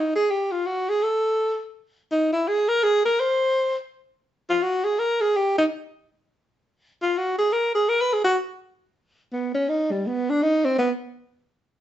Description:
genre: jazz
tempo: 166 BPM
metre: 3/4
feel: swing 66% on 8ths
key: unclear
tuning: A4 = 441 Hz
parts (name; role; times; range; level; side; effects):
- breathy tenor saxophone; solo; 0.0-10.9 s; G3 to B#4; -20 LUFS; equal; none
room: moderate studio reverb, RT60 0.7 s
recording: heard from further back in the room, nothing above 7.9 kHz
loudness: -20 LUFS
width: side -12 dB against mid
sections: 0.0-8.6 A section; 8.6-11.8 A section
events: tenor saxophone solo 0.0-8.6, 8.6-11.8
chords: none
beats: 0.26 0.62 | 0.98 1.34 1.70 | 2.06 2.42 2.78 | 3.14 3.50 3.87 | 4.23 4.59 4.95 | 5.31 5.67 6.03 | 6.39 6.75 7.11 | 7.47 7.83 8.20 | 8.56 8.92 9.28 | 9.64 10.00 10.37 | 10.73

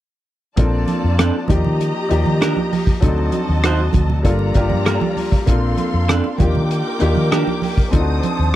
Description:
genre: lush 1970s-style soul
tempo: 98 BPM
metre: 4/4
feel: straight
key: Bb major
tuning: A4 = 440 Hz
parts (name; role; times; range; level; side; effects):
- warm studio string section; second line; 0.6-8.6 s; F4 to Eb6; -26 LUFS; right 1 dB; none
- clear baby grand piano; accompaniment; 0.6-8.6 s; F3 to D5; -22 LUFS; left 2 dB; none
- vintage muted fingered electric bass; bass; 0.6-8.6 s; G1 to Eb3; -18 LUFS; equal; none
- warm soul drum kit; drums; 0.6-8.4 s; hi-hat, kick drum, rim click; -18 LUFS; equal; none
- congas; percussion; 0.6-8.4 s; none; -25 LUFS; right 6 dB; none
- electric guitar through a small old amp; riff; 1.2-7.5 s; Bb3 to C5; -22 LUFS; right 5 dB; spring reverb
room: little or no reverb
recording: dry, close 1970s-style studio recording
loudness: -15 LUFS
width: side -13 dB against mid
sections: 0.6-8.6 A section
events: none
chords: 0.6 Bbmaj9; 1.5 Ebmaj7; 3.0 D7b9; 4.3 Gm9; 5.5 Bbmaj9; 6.4 Ebmaj7; 7.9 D7b9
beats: | 0.58 1.19 1.80 2.42 | 3.03 3.64 4.25 4.87 | 5.48 6.09 6.71 7.32 | 7.93 8.54

